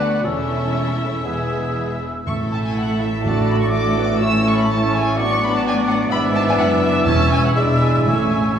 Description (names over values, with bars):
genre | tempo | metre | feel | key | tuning
quick classical-period movement for symphony orchestra | 123 BPM | 4/4 | uneven beats, rubato | A major | A4 = 440 Hz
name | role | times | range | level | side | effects
rich chamber violin section | melody | 0.0-8.6 s | E5 to E6 | -26 LUFS | left 1 dB | none
clear clarinet | second line | 0.0-8.6 s | B3 to F#4 | -29 LUFS | right 1 dB | none
clear oboe | second line | 0.0-8.6 s | G#4 to D5 | -29 LUFS | right 1 dB | none
rich chamber violin section | second line | 0.0-8.6 s | E4 to E5 | -29 LUFS | left 1 dB | none
silver concert flute | second line | 0.0-8.6 s | C#6 to E6 | -26 LUFS | left 2 dB | none
clear studio viola section | accompaniment | 0.0-8.6 s | G#3 to F#4 | -27 LUFS | equal | none
warm bassoon | accompaniment | 0.0-8.6 s | E3 to D4 | -26 LUFS | right 2 dB | none
mellow French horn section | sustained chords | 0.0-8.6 s | G#3 to F#4 | -26 LUFS | left 2 dB | none
clear chamber double bass section | bass | 0.0-8.6 s | E1 to D2 | -24 LUFS | right 2 dB | none
rich chamber cello section | bass | 0.0-8.6 s | D2 to A2 | -24 LUFS | equal | none
timpani | percussion | 2.3-3.9, 7.1-8.6 s | E2 to A2 | -23 LUFS | left 1 dB | none
room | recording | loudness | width
wet recital hall reverb, RT60 1.4 s | heard from further back in the room, studio reverb | -16 LUFS | side -8 dB against mid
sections
0.0-8.6 A section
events
none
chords
0.2 A/E; 1.2 E; 2.3 A5; 3.2 D/A; 4.2 A; 5.2 Bm7/A; 6.1 E7/G#; 7.1 A/E; 7.6 E7; 8.1 A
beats
| 0.25 0.75 1.25 1.75 | 2.26 2.76 3.25 3.73 | 4.21 4.70 5.17 5.65 | 6.12 6.59 7.07 7.56 | 8.06 8.58